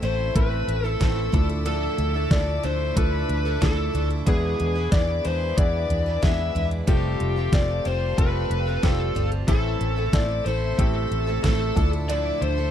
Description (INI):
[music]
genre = piano-driven pop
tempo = 92 BPM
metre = 4/4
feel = straight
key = unclear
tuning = A4 = 439 Hz
[part]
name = bluesy overdriven lead guitar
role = melody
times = 0.0-12.7 s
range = G4 to E5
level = -27 LUFS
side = left 1 dB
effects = distortion
[part]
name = clear baby grand piano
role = accompaniment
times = 0.0-12.7 s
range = A2 to C5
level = -32 LUFS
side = left 5 dB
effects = none
[part]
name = warm chamber string section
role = sustained chords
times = 0.0-12.7 s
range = G4 to E6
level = -40 LUFS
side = left 3 dB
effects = none
[part]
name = picked steel-string acoustic guitar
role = riff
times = 0.0-12.7 s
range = A2 to B4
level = -33 LUFS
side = right 8 dB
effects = none
[part]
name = vintage muted fingered electric bass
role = bass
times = 0.0-12.7 s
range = F1 to E2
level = -25 LUFS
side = equal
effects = none
[part]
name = pop drum kit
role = drums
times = 0.0-12.6 s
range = hi-hat, kick drum, snare drum, toms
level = -22 LUFS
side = equal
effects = overdrive
[sound]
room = little or no reverb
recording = dry, close 1970s-style studio recording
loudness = -20 LUFS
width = side -10 dB against mid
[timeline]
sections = 0.0-12.7 A section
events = none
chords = 0.0 Am; 1.3 Dmadd9; 4.3 E7; 6.9 Fadd9; 9.5 Am; 11.8 Dmadd9